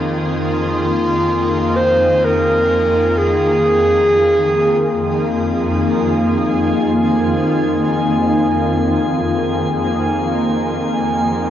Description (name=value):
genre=ambient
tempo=free time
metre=none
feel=none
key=unclear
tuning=A4 = 436 Hz
part: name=shimmering ambient pad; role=sustained chords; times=0.0-11.5 s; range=F2 to Ab4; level=-16 LUFS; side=equal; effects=chorus, built-in reverb, cassette tape, shimmer reverb
part: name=drifting glass-harmonics texture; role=texture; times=0.0-11.5 s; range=Ab5 to Eb6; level=-27 LUFS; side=right 1 dB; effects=chorus, built-in reverb, cassette tape, shimmer reverb
part: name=clear clarinet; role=melody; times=0.3-5.5 s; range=F4 to C5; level=-16 LUFS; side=equal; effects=cassette tape, shimmer reverb, tape echo
room=wet spring reverb, RT60 1.3 s, small room ambience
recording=home recording on cassette, nothing above 7.5 kHz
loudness=-14 LUFS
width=side -10 dB against mid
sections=0.0-6.0 A section; 6.0-11.5 B section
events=fade-in on clarinet 0.0-6.0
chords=0.0 Bb7sus4/F